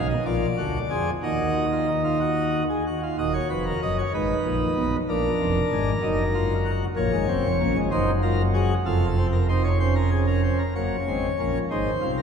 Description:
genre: classical, baroque-style 3-part fugue for pipe organ.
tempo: 63 BPM (dotted quarters).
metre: 6/8.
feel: straight.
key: Eb minor.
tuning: A4 = 440 Hz.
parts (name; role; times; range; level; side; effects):
pipe organ, plenum; solo; 0.0-12.2 s; Eb1 to Eb5; -21 LUFS; equal; none.
room: wet church reverb, RT60 3.9 s.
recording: minimal, uncompressed stereo recording.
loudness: -21 LUFS.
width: side -6 dB against mid.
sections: 0.0-3.2 A section; 3.2-10.8 B section; 10.8-12.2 A section.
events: none.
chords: 0.3 Bb7; 1.2 Ebm; 4.1 Abm; 5.1 Bb7; 6.0 Ebm/Gb; 7.0 Bbm; 7.9 Ebm/Gb; 8.9 F7; 9.8 Bbm/F; 10.8 Gb; 11.7 Fm/Ab.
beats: 0.26 | 1.23 2.21 | 3.19 4.14 | 5.09 6.03 | 6.97 7.90 | 8.85 9.80 | 10.76 11.71.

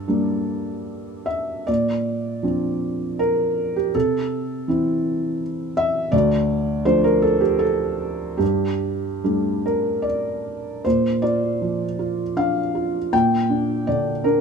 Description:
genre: neoclassical minimalist piano.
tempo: 72-83 BPM.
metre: 3/4.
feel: rubato.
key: unclear.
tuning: A4 = 438 Hz.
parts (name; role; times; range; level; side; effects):
felt-muted upright piano; solo; 0.0-14.4 s; D2 to G5; -19 LUFS; equal; none.
room: little or no reverb.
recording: minimal, uncompressed stereo recording.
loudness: -19 LUFS.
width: side -5 dB against mid.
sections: 0.0-10.8 A section; 10.8-14.4 B section.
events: none.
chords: 0.0 Gmadd9; 1.7 Bbadd9; 3.9 C6; 6.1 Dm; 8.4 Gsus2; 10.8 Bb; 13.1 Gm/Bb.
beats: 0.09 0.88 | 1.68 2.44 3.19 | 3.94 4.68 5.40 | 6.13 6.86 7.62 | 8.41 9.23 10.04 | 10.84 11.61 12.37 | 13.12 13.87.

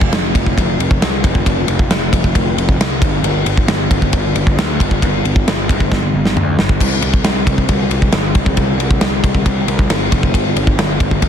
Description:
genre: heavy metal.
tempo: 135 BPM.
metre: 4/4.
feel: straight.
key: unclear.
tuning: A4 = 444 Hz.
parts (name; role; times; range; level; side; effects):
fuzz picked electric bass; bass; 0.0-11.3 s; F1 to D2; -18 LUFS; equal; overdrive.
big rock drum kit; drums; 0.0-11.3 s; crash cymbal, kick drum, ride cymbal, snare drum, toms; -14 LUFS; equal; none.
room: little or no reverb.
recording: dense, heavily limited modern master.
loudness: -12 LUFS.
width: side -8 dB against mid.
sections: 0.0-11.3 A section.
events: drum fill 5.9-6.8.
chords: none.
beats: 0.12 0.56 1.01 | 1.45 1.90 2.34 2.79 | 3.23 3.68 4.12 4.57 | 5.01 5.46 5.91 6.35 | 6.79 7.24 7.68 8.13 | 8.57 9.02 9.46 9.90 | 10.34 10.79 11.23.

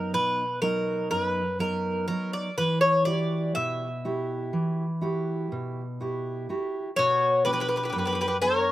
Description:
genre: greek folk, Greek bouzouki band.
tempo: 123 BPM (eighths).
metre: 9/8.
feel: straight.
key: E dorian sharp4.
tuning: A4 = 439 Hz.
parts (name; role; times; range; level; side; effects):
Greek bouzouki; melody; 0.0-8.7 s; A#4 to E5; -25 LUFS; left 1 dB; none.
fingerpicked steel-string acoustic guitar; accompaniment; 0.0-8.7 s; F#2 to G4; -29 LUFS; right 1 dB; none.
mandolin; second line; 7.0-8.7 s; F#4 to A#4; -30 LUFS; left 4 dB; none.
room: little or no reverb.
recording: recorded outdoors, with no room sound.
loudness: -24 LUFS.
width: side -14 dB against mid.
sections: 0.0-7.0 A section; 7.0-8.7 B section.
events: none.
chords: 0.0 B; 2.6 Emadd9; 7.0 Bm.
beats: 0.13 0.62 1.11 1.60 2.08 | 2.58 3.06 3.55 4.04 4.53 5.02 5.51 6.00 6.49 | 6.98 7.46 7.95 8.44.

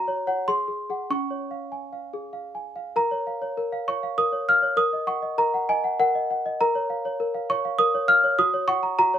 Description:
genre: classical, lullaby for celesta.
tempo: 99 BPM.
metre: 3/4.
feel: straight.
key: Bb minor.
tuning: A4 = 441 Hz.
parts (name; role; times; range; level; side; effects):
small celesta; solo; 0.0-9.2 s; Db4 to F6; -22 LUFS; equal; none.
room: light reverb.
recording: band playing live in one room.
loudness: -21 LUFS.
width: side -10 dB against mid.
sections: 0.0-3.0 A section; 3.0-9.2 B section.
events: none.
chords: 0.5 Ab7; 1.1 Db; 3.0 Bbm; 4.8 Ebm/Bb; 6.6 Bbm; 8.4 Gb.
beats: 0.49 | 1.10 1.73 2.35 | 2.97 3.58 4.18 | 4.79 5.39 5.99 | 6.59 7.19 7.79 | 8.39 8.99.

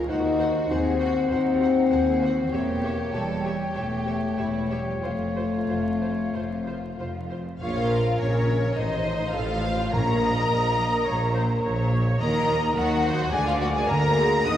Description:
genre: classical, dramatic, fast romantic movement for symphony orchestra.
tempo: 91-108 BPM.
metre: 4/4.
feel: rubato.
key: Bb minor.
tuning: A4 = 440 Hz.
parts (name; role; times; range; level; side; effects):
warm symphonic violin section; second line; 0.0-14.6 s; Db4 to Eb5; -33 LUFS; left 1 dB; none.
dark French horn section; sustained chords; 0.0-14.6 s; Db3 to F4; -27 LUFS; left 3 dB; none.
concert harp; arpeggios; 0.0-14.6 s; A2 to C#5; -33 LUFS; left 1 dB; none.
clear symphonic cello section; bass; 0.0-14.6 s; Eb2 to Eb3; -32 LUFS; right 1 dB; none.
clear symphonic violin section; melody; 0.1-14.6 s; C5 to Eb6; -32 LUFS; left 2 dB; none.
clear clarinet; second line; 0.1-7.3 s; C5 to C#5; -35 LUFS; left 1 dB; none.
mellow hollow silver concert flute; second line; 0.1-14.6 s; Db5 to Eb6; -32 LUFS; left 2 dB; none.
rich symphonic viola section; accompaniment; 0.1-14.6 s; F4 to Eb5; -34 LUFS; right 2 dB; none.
clear symphonic double bass section; bass; 0.1-14.6 s; E1 to Eb2; -30 LUFS; right 1 dB; none.
warm tuba; bass; 7.6-14.6 s; A1 to Eb2; -30 LUFS; right 2 dB; none.
timpani; percussion; 9.9-10.7 s; Bb2; -31 LUFS; equal; none.
room: wet scoring stage reverb, RT60 1.9 s.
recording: heard from further back in the room, vinyl crackle.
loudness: -22 LUFS.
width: side -10 dB against mid.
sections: 0.0-7.6 A section; 7.6-14.6 B section.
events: none.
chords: 0.1 Cdim/Eb; 2.5 Edim7; 5.0 F; 7.6 Bbm; 8.8 F7/A; 9.9 Bbm; 12.2 Ebm; 13.3 Bb7/D.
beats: | 0.09 0.70 1.31 1.92 | 2.53 3.15 3.76 4.38 | 5.03 5.69 6.35 7.00 | 7.62 8.20 8.76 9.34 | 9.93 10.50 11.07 11.63 | 12.20 12.76 13.32 13.88 | 14.47.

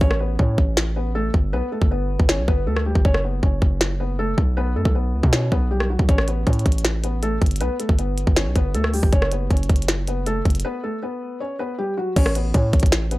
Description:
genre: hip hop, trap.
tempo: 158 BPM.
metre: 4/4.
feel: half-time.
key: unclear.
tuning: A4 = 440 Hz.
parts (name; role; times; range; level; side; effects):
felt-muted upright piano; melody; 0.0-13.2 s; F#3 to C#5; -26 LUFS; left 1 dB; tape echo.
distorted 808-style bass; bass; 0.0-13.2 s; F#1 to B2; -22 LUFS; equal; distortion.
minimal click drum kit; drums; 0.0-13.2 s; crash cymbal, hi-hat, kick drum, rim click, snare drum; -19 LUFS; equal; overdrive.
room: digital ambience.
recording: dry, gritty hardware recording.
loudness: -18 LUFS.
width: side -18 dB against mid.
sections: 0.0-12.2 A section; 12.2-13.2 B section.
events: break 0.0-6.1, 10.6-12.2.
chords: 0.0 Aadd9; 1.5 G; 3.0 F#5; 4.6 N.C.; 6.1 Aadd9; 7.6 G; 9.1 F#5; 10.6 N.C.; 12.2 Aadd9.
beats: | 0.01 0.39 0.77 1.15 | 1.53 1.91 2.29 2.67 | 3.05 3.43 3.81 4.19 | 4.57 4.95 5.33 5.71 | 6.09 6.47 6.85 7.23 | 7.61 7.99 8.37 8.75 | 9.13 9.51 9.88 10.27 | 10.64 11.02 11.40 11.78 | 12.16 12.54 12.92.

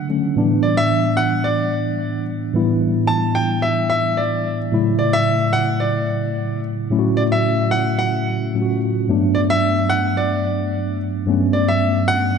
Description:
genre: amapiano.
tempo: 110 BPM.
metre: 4/4.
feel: swing 55% on 16ths.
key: unclear.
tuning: A4 = 441 Hz.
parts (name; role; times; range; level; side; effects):
clear baby grand piano; melody; 0.0-12.4 s; D5 to A5; -21 LUFS; left 1 dB; tape echo.
mellow tine electric piano; accompaniment; 0.0-12.4 s; G2 to F#4; -18 LUFS; equal; medium stereo tremolo.
room: wet concert hall reverb, RT60 1.8 s.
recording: dark, warm production.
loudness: -16 LUFS.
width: side -6 dB against mid.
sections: 0.0-12.4 A section.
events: none.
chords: 0.4 A9sus4; 4.7 Dmaj9/A; 9.1 Gmaj9.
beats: | 0.36 0.90 1.45 2.00 | 2.54 3.09 3.63 4.18 | 4.72 5.27 5.81 6.36 | 6.90 7.45 8.00 8.54 | 9.09 9.63 10.18 10.72 | 11.27 11.81 12.36.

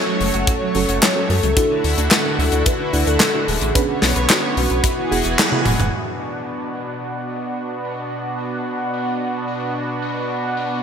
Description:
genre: synthwave.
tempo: 110 BPM.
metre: 4/4.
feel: straight.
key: unclear.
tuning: A4 = 440 Hz.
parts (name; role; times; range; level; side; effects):
warm velvety synth lead; melody; 0.0-5.6 s; F#4 to C#5; -24 LUFS; equal; chorus, tremolo, ping-pong delay.
lush unison pad; sustained chords; 0.0-10.8 s; B2 to C#5; -23 LUFS; right 1 dB; chorus, sidechain pumping.
mellow FM electric piano; stabs; 0.0-5.6 s; C#4 to B4; -26 LUFS; right 3 dB; chorus, vintage 12-bit sampler grit, ping-pong delay.
electric guitar at the edge of break-up; riff; 0.1-5.8 s; D3 to B4; -27 LUFS; right 1 dB; ensemble chorus, ping-pong delay.
round analog bass; bass; 0.2-5.9 s; D1 to F#2; -21 LUFS; equal; sidechain pumping.
tight metal drum kit; drums; 0.2-10.7 s; crash cymbal, handclaps, hi-hat, snare drum, toms; -19 LUFS; left 1 dB; low-pass filter on hats, low-pass filter on toms, low-pass filter on cymbals, low-pass filter on snare, low-pass filter on room, gated reverb.
kick drum; drums; 0.5-4.9 s; none; -20 LUFS; equal; none.
room: moderate plate reverb, RT60 2.3 s.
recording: bright 1980s-style digital production.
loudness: -17 LUFS.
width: side -7 dB against mid.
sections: 0.0-5.9 A section; 5.9-10.8 B section.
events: band accent 5.4; drum fill 5.5-5.9; filter sweep on drum 5.9-10.8.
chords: 0.0 F#m; 1.6 Dadd9; 3.8 Bmadd9; 4.8 Eadd9; 5.9 Bm.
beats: 0.48 1.02 | 1.57 2.12 2.66 3.21 | 3.75 4.30 4.84 5.39 | 5.93 6.48 7.03 7.57 | 8.12 8.66 9.21 9.75 | 10.30.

